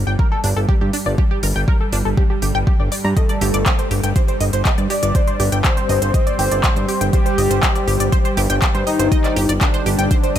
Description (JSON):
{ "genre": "melodic techno", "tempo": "121 BPM", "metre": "4/4", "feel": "straight", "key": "unclear", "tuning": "A4 = 440 Hz", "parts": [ { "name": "fat analog bass", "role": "bass", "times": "0.0-10.4 s", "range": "G1 to G2", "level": "-19 LUFS", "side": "equal", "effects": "sidechain pumping" }, { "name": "bowed-like drone", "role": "drone", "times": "0.0-10.4 s", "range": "G2 to G3", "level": "-29 LUFS", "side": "right 3 dB", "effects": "built-in reverb, sidechain pumping" }, { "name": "tight sequenced synth", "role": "arpeggios", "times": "0.1-10.4 s", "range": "D4 to Bb5", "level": "-24 LUFS", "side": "right 1 dB", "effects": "chorus, phaser, sidechain pumping, tape echo" }, { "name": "electronic kick drum", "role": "drums", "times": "0.2-10.2 s", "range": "none", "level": "-17 LUFS", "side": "equal", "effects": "overdrive, studio reverb" }, { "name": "techno drum kit", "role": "drums", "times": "0.4-10.4 s", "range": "handclaps, hi-hat", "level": "-24 LUFS", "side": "equal", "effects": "overdrive, sidechain pumping on hats, studio reverb" }, { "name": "fat analog lead", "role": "melody", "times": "3.2-10.4 s", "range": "D4 to D5", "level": "-22 LUFS", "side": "left 3 dB", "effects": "lush chorus, sidechain pumping, dub echo" }, { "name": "dark analog pad", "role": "sustained chords", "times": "5.1-10.4 s", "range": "G3 to G5", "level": "-26 LUFS", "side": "right 2 dB", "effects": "chorus, sidechain pumping" } ], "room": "little or no reverb", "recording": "none", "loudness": "-15 LUFS", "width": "side -10 dB against mid", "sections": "0.0-10.4 A section", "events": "none", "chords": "0.0 Gmadd9; 3.2 Cm/G", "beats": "0.19 0.69 | 1.18 1.68 2.17 2.67 | 3.17 3.66 4.16 4.65 | 5.15 5.65 6.14 6.64 | 7.13 7.63 8.12 8.62 | 9.12 9.61 10.11" }